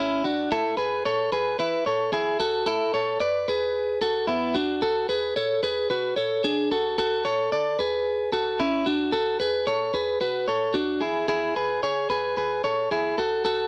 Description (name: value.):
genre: indie pop.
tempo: 111 BPM.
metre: 4/4.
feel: straight.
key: E mixolydian.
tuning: A4 = 444 Hz.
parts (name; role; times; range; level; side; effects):
clean electric guitar; solo; 0.0-13.7 s; B3 to D5; -25 LUFS; equal; none.
room: little or no reverb.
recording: dry, close 1970s-style studio recording.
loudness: -25 LUFS.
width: mono.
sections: 0.0-9.1 A section; 9.1-11.3 B section; 11.3-13.7 C section.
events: none.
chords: 0.0 Dmaj7; 0.5 E7sus4; 4.8 Bm7; 7.0 Dmaj7; 11.3 E6.